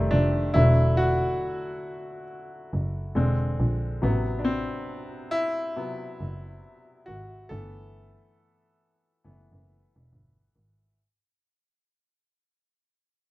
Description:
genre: R&B, neo-soul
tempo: 69 BPM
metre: 4/4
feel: swing 62% on 16ths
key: unclear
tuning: A4 = 440 Hz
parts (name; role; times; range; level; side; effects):
- bright concert grand piano; accompaniment; 0.0-11.0 s; C3 to A4; -27 LUFS; left 1 dB; none
- muted double bass; bass; 0.0-10.9 s; E1 to Bb1; -24 LUFS; equal; none
room: little or no reverb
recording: rough home demo mix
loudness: -23 LUFS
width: side -18 dB against mid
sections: 0.0-11.0 A section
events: fade-out 0.0-11.0; grand piano solo 0.0-11.0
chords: 0.0 F9; 0.5 E9sus4; 3.1 E7b13; 4.0 Am69; 7.5 G69

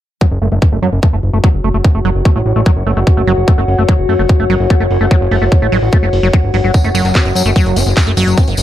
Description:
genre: psychedelic trance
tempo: 147 BPM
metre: 4/4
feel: straight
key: F# minor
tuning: A4 = 440 Hz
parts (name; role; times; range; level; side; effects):
- liquid acid bass; riff; 0.2-8.5 s; F#3 to C#4; -18 LUFS; moving between left 2 dB and right 4 dB; chorus, auto-pan, sidechain pumping, digital delay
- electronic kick drum; drums; 0.2-8.5 s; none; -10 LUFS; equal; none
- warbly tape-like pad; texture; 1.3-8.6 s; F#4 to F#5; -18 LUFS; left 2 dB; chorus, built-in reverb, sidechain pumping
- fat analog bass; bass; 0.3-8.6 s; F#1 to F#2; -14 LUFS; equal; none
- techno drum kit; drums; 0.4-8.6 s; handclaps, hi-hat; -23 LUFS; equal; low-pass filter on hats, low-pass filter on snare
- tambourine; percussion; 6.7-8.6 s; none; -22 LUFS; left 4 dB; none
room: digital ambience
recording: dark, warm production, lossy compression artefacts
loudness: -10 LUFS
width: side -12 dB against mid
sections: 0.2-8.6 A section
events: filter sweep on drum 0.2-8.6; filter sweep on acid bass 0.2-8.6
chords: 0.2 F#5

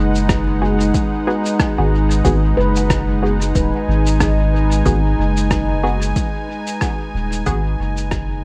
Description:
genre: ambient dub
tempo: 92 BPM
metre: 4/4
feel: swing 57% on 16ths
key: G# minor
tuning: A4 = 439 Hz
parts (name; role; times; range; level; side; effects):
- warm analog pad; sustained chords; 0.0-8.4 s; G#3 to A#5; -23 LUFS; equal; chorus
- soft dub sub bass; bass; 0.0-8.4 s; D#1 to G#1; -20 LUFS; equal; none
- electronic cabasa and rim click; drums; 0.2-8.3 s; none; -28 LUFS; equal; studio ambience, dub echo
- electronic kick drum; drums; 0.3-8.3 s; none; -24 LUFS; equal; overdrive, studio ambience
- filtered dub chord stab; stabs; 0.6-7.7 s; B3 to G#4; -28 LUFS; equal; chorus, dub echo
- handpan; arpeggios; 2.6-8.4 s; D#4 to B4; -28 LUFS; equal; dub echo
room: light reverb, digital ambience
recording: vinyl crackle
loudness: -17 LUFS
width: mono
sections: 0.0-8.4 A section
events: fade-out 5.7-8.4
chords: 0.0 G#m7

